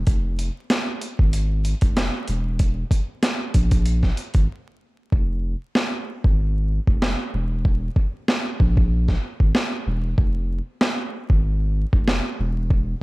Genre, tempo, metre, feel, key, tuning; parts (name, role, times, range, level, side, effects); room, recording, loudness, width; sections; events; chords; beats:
hip hop, boom-bap hip-hop; 95 BPM; 4/4; swing 54% on 16ths; A4 = 437 Hz
soft dub sub bass; bass; 0.0-12.9 s; E1 to Bb1; -22 LUFS; equal
boom bap sampler-style drum kit; drums; 0.1-12.9 s; hi-hat, kick drum, snare drum; -20 LUFS; equal
little or no reverb; vinyl crackle; -19 LUFS; side -21 dB against mid
0.0-13.0 A section
break 4.5-5.1; hi-hats muted 5.1-13.0
| 0.07 0.70 1.33 1.97 | 2.60 3.23 3.86 4.49 | 5.12 5.76 6.39 7.02 | 7.65 8.28 8.91 9.55 | 10.18 10.81 11.44 12.07 | 12.70